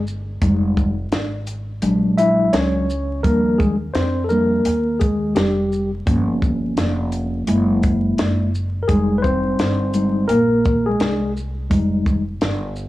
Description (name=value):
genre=hip hop, jazz-hop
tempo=85 BPM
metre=4/4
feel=swing 65% on 16ths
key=F minor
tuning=A4 = 440 Hz
part: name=mellow tine electric piano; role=accompaniment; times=0.0-12.2 s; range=F3 to E5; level=-18 LUFS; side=equal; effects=fast stereo tremolo
part: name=upright bass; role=bass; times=0.0-12.9 s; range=F1 to F2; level=-24 LUFS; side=equal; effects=none
part: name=compact cocktail drum kit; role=drums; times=0.1-12.9 s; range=hi-hat, kick drum, shaker, snare drum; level=-22 LUFS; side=equal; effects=none
room=small room ambience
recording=dry, gritty hardware recording, vinyl crackle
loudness=-16 LUFS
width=side -16 dB against mid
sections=0.0-12.9 A section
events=tine electric piano solo 0.0-12.9; kick muted 1.8-3.2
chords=0.4 Fm9; 1.8 Bb7alt; 3.2 Ebmaj9; 6.1 Gm7b5; 7.5 Gb9; 8.9 Fm9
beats=| 0.42 1.12 1.83 2.54 | 3.24 3.95 4.65 5.36 | 6.07 6.77 7.48 8.18 | 8.89 9.59 10.30 11.01 | 11.71 12.42